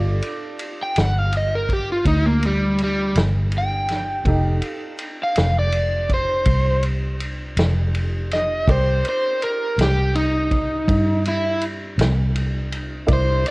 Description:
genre	slow blues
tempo	54 BPM (dotted quarters)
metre	12/8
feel	straight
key	unclear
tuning	A4 = 440 Hz
part	overdriven semi-hollow guitar	melody	0.0-13.5 s	G3 to G5	-21 LUFS	equal	none
part	warm upright piano	accompaniment	0.0-13.5 s	Eb4 to D5	-28 LUFS	right 2 dB	none
part	vintage muted fingered electric bass	bass	0.0-13.4 s	F1 to G2	-20 LUFS	equal	none
part	vintage drum kit	drums	0.2-13.5 s	kick drum, ride cymbal, snare drum	-25 LUFS	equal	none
room	light reverb, small room ambience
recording	worn, warbling old tape, cassette tape, warbly pitch drift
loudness	-18 LUFS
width	side -24 dB against mid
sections	0.0-13.5 A section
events	overdriven electric guitar solo 0.0-13.5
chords	0.0 G7sus2; 4.3 F9; 8.7 C7sus2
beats	0.97 2.07 3.17 | 4.27 5.37 6.48 7.58 | 8.68 9.79 10.89 12.00 | 13.10

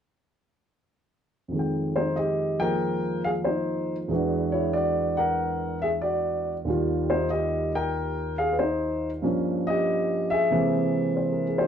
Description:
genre	solo jazz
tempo	93 BPM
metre	4/4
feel	swing 69% on 8ths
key	unclear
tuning	A4 = 444 Hz
part	dark baby grand piano	solo	1.5-11.7 s	Eb2 to G5	-23 LUFS	equal	none
room	wet studio reverb, RT60 0.5 s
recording	heard from further back in the room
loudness	-23 LUFS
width	side -8 dB against mid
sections	1.5-11.7 A section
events	none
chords	1.5 Fm9; 4.1 E9; 6.7 Ebadd9; 9.2 Gm7b5; 10.5 C7b13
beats	| 1.52 2.16 2.81 3.45 | 4.09 4.73 5.38 6.02 | 6.66 7.30 7.95 8.59 | 9.23 9.87 10.51 11.15

